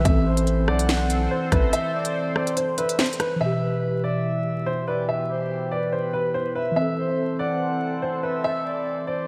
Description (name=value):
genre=hip hop, drill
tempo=143 BPM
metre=4/4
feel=half-time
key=E minor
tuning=A4 = 439 Hz
part: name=breathy flute-like synth lead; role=second line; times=0.0-9.3 s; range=B4 to F#5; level=-32 LUFS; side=equal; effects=chorus, delay
part: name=mellow tine electric piano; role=accompaniment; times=0.0-9.3 s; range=B2 to A4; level=-30 LUFS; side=equal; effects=ensemble chorus
part: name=sweeping resonant pad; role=sustained chords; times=0.0-9.3 s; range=B2 to C5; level=-35 LUFS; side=equal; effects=chorus
part: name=long sustained 808-style bass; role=bass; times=0.0-1.7 s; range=A1 to B1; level=-26 LUFS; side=equal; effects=none
part: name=warm upright piano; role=melody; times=0.1-9.2 s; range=B4 to E5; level=-29 LUFS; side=equal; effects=none
part: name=drill drum kit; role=drums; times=0.1-3.3 s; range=hi-hat, kick drum, rim click, snare drum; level=-27 LUFS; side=equal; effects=none
room=moderate lush hall reverb, RT60 2.3 s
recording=bright 1980s-style digital production, vinyl crackle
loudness=-24 LUFS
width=mono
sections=0.0-3.4 A section; 3.4-9.3 B section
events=break 1.7-3.4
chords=0.1 Am; 3.4 Em; 6.8 Am